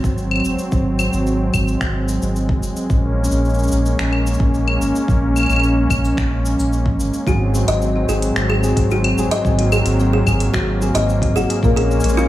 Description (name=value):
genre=folktronica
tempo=110 BPM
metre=4/4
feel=straight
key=Ab mixolydian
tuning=A4 = 438 Hz
part: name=warm analog pad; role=sustained chords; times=0.0-12.3 s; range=Gb3 to Db4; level=-20 LUFS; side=equal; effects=chorus
part: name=warm sub bass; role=bass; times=0.0-12.3 s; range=Gb1 to Bb1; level=-20 LUFS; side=equal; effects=none
part: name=electronic kick drum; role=drums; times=0.0-11.7 s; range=none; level=-21 LUFS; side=equal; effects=none
part: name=organic electronic drum kit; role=drums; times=0.0-12.3 s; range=claves, finger snaps, hi-hat, shaker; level=-25 LUFS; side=left 1 dB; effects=none
part: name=kalimba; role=second line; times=7.3-12.3 s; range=F4 to Eb5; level=-22 LUFS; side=equal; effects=digital delay
part: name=nylon-string guitar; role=arpeggios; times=7.3-12.3 s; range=Ab2 to Bb4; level=-20 LUFS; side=equal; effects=tape echo
room=light reverb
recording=studio reverb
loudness=-15 LUFS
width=side -14 dB against mid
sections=0.0-12.3 A section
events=none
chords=0.0 Ab7; 2.9 Bbm7; 7.3 Ab7; 11.6 Bbm7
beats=0.18 | 0.72 1.27 1.81 2.36 | 2.90 3.45 3.99 4.54 | 5.08 5.63 6.18 6.72 | 7.27 7.81 8.36 8.90 | 9.45 9.99 10.54 11.09 | 11.63 12.18